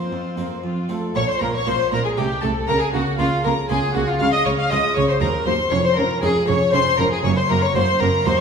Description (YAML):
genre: classical, baroque-style concerto movement with solo episodes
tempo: 118 BPM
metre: 3/4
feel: straight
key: Bb minor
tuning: A4 = 441 Hz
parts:
  - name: dark violin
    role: melody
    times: 0.0-8.4 s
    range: F4 to F5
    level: -24 LUFS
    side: left 1 dB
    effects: none
  - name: warm chamber violin section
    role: melody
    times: 0.0-8.4 s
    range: C5 to F6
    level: -24 LUFS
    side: left 3 dB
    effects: none
  - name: warm chamber violin section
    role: second line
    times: 0.0-8.4 s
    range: C4 to F5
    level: -24 LUFS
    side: left 3 dB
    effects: none
  - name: dark chamber viola section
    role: accompaniment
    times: 0.0-8.3 s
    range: Gb3 to Db4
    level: -29 LUFS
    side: right 2 dB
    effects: none
  - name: harpsichord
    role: accompaniment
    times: 0.0-8.4 s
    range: Eb2 to Bb4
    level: -27 LUFS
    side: equal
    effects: none
  - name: rich chamber cello section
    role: bass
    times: 0.1-8.3 s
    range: Eb2 to Db3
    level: -26 LUFS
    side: right 4 dB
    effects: none
  - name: rich chamber double bass section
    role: bass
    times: 1.1-8.3 s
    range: F1 to Eb2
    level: -26 LUFS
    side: right 3 dB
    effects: none
room: wet recital hall reverb, RT60 1.4 s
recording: heard from further back in the room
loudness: -17 LUFS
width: side -6 dB against mid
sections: 0.0-1.1 A section; 1.1-8.4 B section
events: none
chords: 0.0 Fsus4; 0.6 F; 1.1 Bb5; 2.2 Adim/C; 2.7 Bbm/Db; 4.2 Db; 5.2 Cdim/Eb; 5.7 Db/F; 7.2 Gb